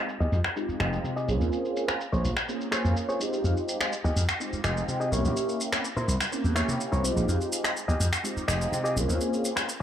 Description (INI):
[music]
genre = filtered disco house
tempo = 125 BPM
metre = 4/4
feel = straight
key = F minor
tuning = A4 = 438 Hz
[part]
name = mellow synth brass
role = accompaniment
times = 0.0-9.7 s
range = Ab3 to G5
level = -30 LUFS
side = right 1 dB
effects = chorus, phaser, low-pass filter
[part]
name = direct-recorded clean electric guitar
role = riff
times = 0.1-9.8 s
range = E4 to Eb5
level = -34 LUFS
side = left 2 dB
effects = low-pass filter
[part]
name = electronic shaker and finger snaps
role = drums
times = 0.1-9.8 s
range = none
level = -31 LUFS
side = equal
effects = low-pass filter on perc, low-pass filter on snare, low-pass filter on room
[part]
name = glassy slap bass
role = bass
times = 0.2-9.2 s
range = F1 to C3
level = -26 LUFS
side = equal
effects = low-pass filter
[part]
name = tambourine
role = percussion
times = 3.4-9.8 s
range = none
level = barely audible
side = none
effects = none
[sound]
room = light reverb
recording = none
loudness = -25 LUFS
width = side -10 dB against mid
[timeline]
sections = 0.0-9.8 A section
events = filter sweep 0.0-9.8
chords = 0.0 Fm9; 1.5 Bbm9; 3.4 Fm9; 5.1 C7b9; 7.3 Fm9; 9.2 Bbm9